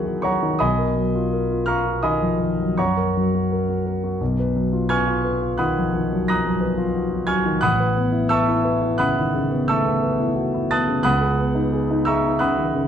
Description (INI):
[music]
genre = classical, impressionist solo piano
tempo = 86 BPM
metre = 5/4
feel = uneven beats, rubato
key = unclear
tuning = A4 = 443 Hz
[part]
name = warm concert grand piano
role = solo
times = 0.0-12.9 s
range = A1 to A#6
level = -18 LUFS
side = equal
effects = none
[sound]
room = wet recital hall reverb, RT60 1.3 s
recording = dark, warm production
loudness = -18 LUFS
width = side -8 dB against mid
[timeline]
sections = 0.0-12.9 A section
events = none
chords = 0.0 F#6; 0.6 Bmaj7#11; 2.8 F#; 4.2 Bmaj7#11; 7.6 Aadd9; 11.0 C#9sus4